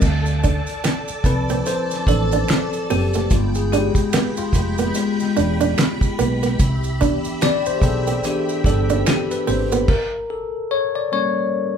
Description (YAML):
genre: R&B, neo-soul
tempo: 73 BPM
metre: 4/4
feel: swing 59% on 16ths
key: D dorian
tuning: A4 = 439 Hz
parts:
  - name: bell-like tine electric piano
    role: accompaniment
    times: 0.0-11.8 s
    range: E3 to D5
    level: -22 LUFS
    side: left 3 dB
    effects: phaser
  - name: string machine, violins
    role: sustained chords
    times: 0.0-9.9 s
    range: Ab3 to B5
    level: -26 LUFS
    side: left 3 dB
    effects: ensemble chorus
  - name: hollow-body short-scale fingered electric bass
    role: bass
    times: 0.0-9.8 s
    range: E1 to D2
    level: -23 LUFS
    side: equal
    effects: none
  - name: damped 70s drum kit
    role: drums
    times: 0.0-10.1 s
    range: crash cymbal, finger snaps, hi-hat, kick drum, snare drum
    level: -20 LUFS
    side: right 1 dB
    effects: none
  - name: maracas and finger snaps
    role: percussion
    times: 0.0-9.9 s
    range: none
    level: -33 LUFS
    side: right 4 dB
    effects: none
  - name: nylon-string guitar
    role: second line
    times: 0.4-9.8 s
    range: A3 to D4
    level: -24 LUFS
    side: right 6 dB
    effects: none
room: moderate large studio reverb, RT60 1.2 s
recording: band playing live in one room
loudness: -17 LUFS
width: side -7 dB against mid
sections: 0.0-11.8 A section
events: tine electric piano solo 0.0-11.8; stop 9.9-11.8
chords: 0.0 Dm7; 3.3 G7b9; 6.6 Cmaj7; 9.9 A7b9